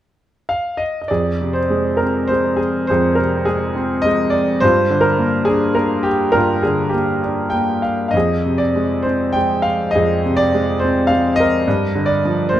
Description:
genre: classical, lyrical solo piano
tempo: 102 BPM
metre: 3/4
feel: uneven beats, rubato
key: F dorian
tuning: A4 = 440 Hz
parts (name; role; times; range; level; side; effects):
- warm grand piano; solo; 0.5-12.6 s; F2 to G5; -15 LUFS; equal; none
room: moderate scoring stage reverb, RT60 1.8 s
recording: none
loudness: -15 LUFS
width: side -12 dB against mid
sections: 0.0-1.1 A section; 1.1-12.6 B section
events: none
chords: 0.0 N.C.; 1.1 Fm; 4.6 Gm7; 8.1 Fm; 11.7 Gm7

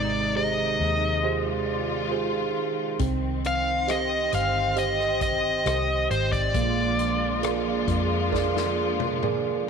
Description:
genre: pop ballad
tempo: 68 BPM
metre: 4/4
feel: straight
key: unclear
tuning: A4 = 441 Hz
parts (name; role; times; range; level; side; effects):
- dark smooth lead guitar; melody; 0.0-9.0 s; C5 to F5; -26 LUFS; left 2 dB; overdrive, slapback echo
- bright tine electric piano; accompaniment; 0.0-9.7 s; Ab3 to Eb5; -28 LUFS; right 11 dB; none
- warm studio string section; sustained chords; 0.0-9.7 s; C3 to F4; -30 LUFS; left 4 dB; none
- vintage muted fingered electric bass; bass; 0.0-9.6 s; G1 to F2; -30 LUFS; left 1 dB; none
- natural country drum kit; drums; 3.0-9.4 s; hi-hat, kick drum, rim click, snare drum, toms; -32 LUFS; left 6 dB; none
room: moderate echo chamber reverb, RT60 2.6 s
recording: 1960s-style stereo with parts hard left and right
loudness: -22 LUFS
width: side -6 dB against mid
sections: 0.0-9.7 A section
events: drum fill 8.3-9.7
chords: 0.0 Abmaj7; 3.0 Cm; 6.5 Bb7

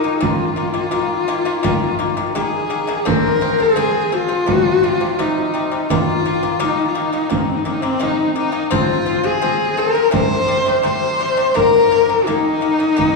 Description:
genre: mongolian traditional, Mongolian folk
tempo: 85 BPM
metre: 4/4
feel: straight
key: unclear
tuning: A4 = 441 Hz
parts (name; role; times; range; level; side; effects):
- clear horsehead fiddle; melody; 0.0-13.2 s; C4 to C5; -18 LUFS; left 3 dB; none
- low xiao; second line; 0.0-13.2 s; C4 to C5; -23 LUFS; left 1 dB; none
- pipa; arpeggios; 0.0-13.2 s; C3 to C4; -22 LUFS; left 5 dB; none
- frame drum; percussion; 0.0-13.2 s; none; -23 LUFS; right 2 dB; none
room: wet church reverb, RT60 2.6 s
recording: recorded in a church or concert hall, small room ambience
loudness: -15 LUFS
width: side -2 dB against mid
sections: 0.0-3.1 A section; 3.1-13.2 B section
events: none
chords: 0.0 Eb5; 3.1 F5; 4.5 C5; 5.9 Eb5; 8.7 F5; 10.1 C5; 11.6 Eb5

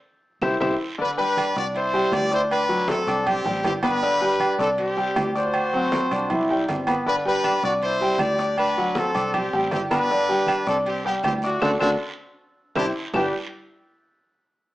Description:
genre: latin, salsa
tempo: 158 BPM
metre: 4/4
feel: straight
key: G major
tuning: A4 = 436 Hz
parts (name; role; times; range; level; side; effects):
- bright concert grand piano; accompaniment; 0.4-13.3 s; D3 to D6; -24 LUFS; equal; none
- fingered electric bass; bass; 0.4-13.3 s; G1 to D2; -33 LUFS; equal; none
- claves; percussion; 0.4-0.7, 7.4-13.2 s; none; -35 LUFS; left 2 dB; none
- congas; percussion; 0.4-13.2 s; none; -33 LUFS; left 1 dB; none
- guiro; percussion; 0.4-13.2 s; none; -41 LUFS; right 3 dB; none
- timbales and agogo bells; percussion; 0.4-13.2 s; none; -28 LUFS; right 2 dB; none
- brilliant horn section; melody; 1.0-13.3 s; A3 to D5; -24 LUFS; left 1 dB; plate reverb
- mellow trombone section; second line; 5.7-7.0, 13.1-13.3 s; B3 to E4; -25 LUFS; equal; none
room: wet studio reverb, RT60 0.8 s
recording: small speaker sound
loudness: -20 LUFS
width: side -16 dB against mid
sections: 1.0-13.1 A section; 13.1-14.7 B section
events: drum fill 0.0-1.0, 12.2-13.1; band accent 0.0-1.0, 11.6-13.1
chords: 0.2 C; 1.0 G; 2.5 D7; 3.3 Csus2; 4.0 G; 4.8 Csus2; 5.5 D7; 6.3 Cadd9; 7.1 G; 7.8 Cadd9; 8.6 D7; 9.3 Csus2; 10.1 G; 10.9 Csus2; 11.6 D7; 12.4 C; 13.1 G5

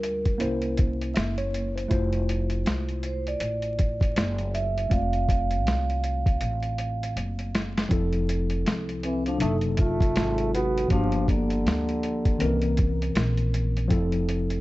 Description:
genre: hip hop, jazz-hop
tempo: 80 BPM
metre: 4/4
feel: swing 60% on 16ths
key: F major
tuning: A4 = 440 Hz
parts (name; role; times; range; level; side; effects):
- vibraphone with medium mallets; melody; 0.0-12.8 s; Bb3 to F5; -30 LUFS; right 1 dB; analog delay
- mellow tine electric piano; accompaniment; 0.0-14.6 s; C3 to E5; -30 LUFS; left 1 dB; medium stereo tremolo
- upright bass; bass; 0.0-14.6 s; F1 to D2; -28 LUFS; equal; none
- lo-fi sampler-style drum kit; drums; 0.0-14.6 s; hi-hat, kick drum, snare drum; -26 LUFS; equal; none
- trombone with cup mute; second line; 9.0-12.7 s; D3 to B3; -31 LUFS; right 2 dB; none
room: studio reverb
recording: dry, gritty hardware recording, vinyl crackle, nothing above 7.9 kHz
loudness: -23 LUFS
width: side -18 dB against mid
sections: 0.0-7.9 A section; 7.9-14.6 A section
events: drum fill 6.4-7.9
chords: 0.4 C7b9; 1.9 Fmaj7; 9.4 F#dim7; 10.9 Gm7; 12.4 C7b9; 13.9 Fmaj7

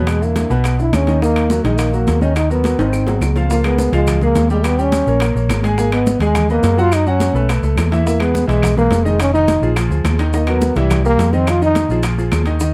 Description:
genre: Afro-Cuban jazz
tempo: 211 BPM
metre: 4/4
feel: straight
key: Eb minor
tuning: A4 = 440 Hz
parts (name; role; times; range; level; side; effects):
- mellow trombone; melody; 0.0-12.0 s; Gb3 to F4; -20 LUFS; equal; none
- warm concert grand piano; accompaniment; 0.0-12.7 s; B2 to Ab5; -23 LUFS; equal; none
- hollow-body short-scale fingered electric bass; bass; 0.0-12.7 s; F1 to Gb2; -19 LUFS; equal; none
- bongos; percussion; 0.1-12.7 s; none; -32 LUFS; equal; none
- claves; percussion; 0.1-12.5 s; none; -32 LUFS; equal; none
- congas; percussion; 0.1-12.7 s; none; -26 LUFS; equal; none
- maracas; percussion; 0.1-12.7 s; none; -38 LUFS; equal; none
- timbales; percussion; 0.1-12.6 s; none; -31 LUFS; equal; none
room: little or no reverb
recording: close, detailed microphones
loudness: -16 LUFS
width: mono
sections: 0.0-3.5 A section; 3.5-12.6 B section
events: drum fill 2.8-3.5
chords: 0.1 E5; 1.2 Ebm; 2.9 Ab7; 3.5 Db69; 4.6 Eb7; 5.8 Abm9; 6.9 Gbm; 7.5 Bsus2; 8.1 Emaj7#11; 9.2 Fm7; 9.8 Bb7; 10.3 Ebm; 10.9 C7; 11.5 Bb7sus4

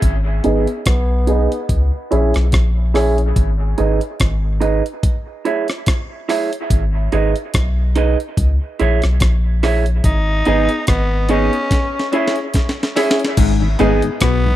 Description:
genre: dub reggae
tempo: 72 BPM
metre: 4/4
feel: swing 56% on 16ths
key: G# minor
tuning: A4 = 440 Hz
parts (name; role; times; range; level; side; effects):
- soft dub sub bass; bass; 0.0-14.6 s; G#1 to C#2; -16 LUFS; equal; none
- breakbeat sampler-style drum kit; drums; 0.0-14.4 s; crash cymbal, hi-hat, kick drum, rim click, snare drum; -18 LUFS; equal; none
- electric guitar through a small old amp; accompaniment; 0.4-14.0 s; D#4 to E5; -21 LUFS; right 6 dB; low-pass filter, dub echo
- bright baby grand piano; stabs; 0.4-3.2, 10.5-14.0 s; B3 to G#4; -22 LUFS; left 3 dB; low-pass filter, dub echo
- raspy tenor saxophone; melody; 0.9-1.7, 10.0-14.6 s; B3 to D#4; -23 LUFS; left 1 dB; low-pass filter, dub echo
- overdriven clav; riff; 13.4-14.5 s; G#2 to B2; -20 LUFS; left 10 dB; none
- mellow tonewheel organ; accompaniment; 13.6-14.5 s; G#2 to D#4; -26 LUFS; left 4 dB; none
room: digital ambience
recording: dry, close 1970s-style studio recording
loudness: -14 LUFS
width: side -14 dB against mid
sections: 0.0-13.4 A section; 13.4-14.6 B section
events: break 0.0-10.0; filter sweep 0.0-13.4; drum fill 11.7-13.4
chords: 0.0 G#m; 1.7 C#m; 3.4 G#m; 5.0 C#m; 6.7 G#m; 8.4 C#m; 10.0 G#m; 11.7 C#m; 13.4 G#m

